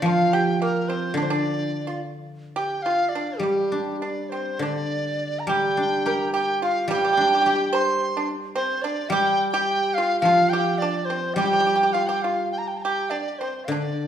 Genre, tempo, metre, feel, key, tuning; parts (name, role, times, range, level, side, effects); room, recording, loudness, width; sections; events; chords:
chinese traditional, Chinese chamber ensemble; 106 BPM; 4/4; rubato; G yu mode; A4 = 441 Hz
reedy large dizi; melody; 0.0-14.1 s; G4 to C6; -24 LUFS; equal
pipa; second line; 0.0-14.1 s; G3 to C5; -27 LUFS; right 3 dB
guzheng; accompaniment; 0.0-14.1 s; D3 to G4; -26 LUFS; equal
wet recital hall reverb, RT60 1.4 s; studio ambience; -20 LUFS; side -9 dB against mid
0.0-4.6 A section; 4.6-14.1 B section